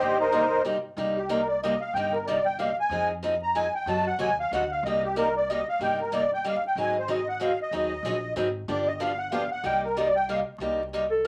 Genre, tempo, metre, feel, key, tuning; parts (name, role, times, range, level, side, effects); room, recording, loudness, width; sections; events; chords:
acoustic string swing (jazz manouche); 187 BPM; 3/4; swing 59% on 8ths; C minor; A4 = 440 Hz
musette accordion; melody; 0.0-10.4 s; Eb4 to Bb5; -29 LUFS; equal
picked steel-string acoustic guitar; accompaniment; 0.0-11.3 s; C3 to Ab4; -30 LUFS; equal
upright bass; bass; 0.0-11.3 s; G1 to F#2; -42 LUFS; equal
clear clarinet; second line; 11.1-11.3 s; A4; -25 LUFS; equal
moderate club reverb, RT60 0.6 s; vinyl crackle; -27 LUFS; mono
0.0-10.6 A section
accordion solo 0.0-10.6
0.0 Cm7; 2.9 Fm7; 3.9 F#dim7; 4.8 Cm7; 6.8 Ab7; 8.7 G7; 9.6 Cm7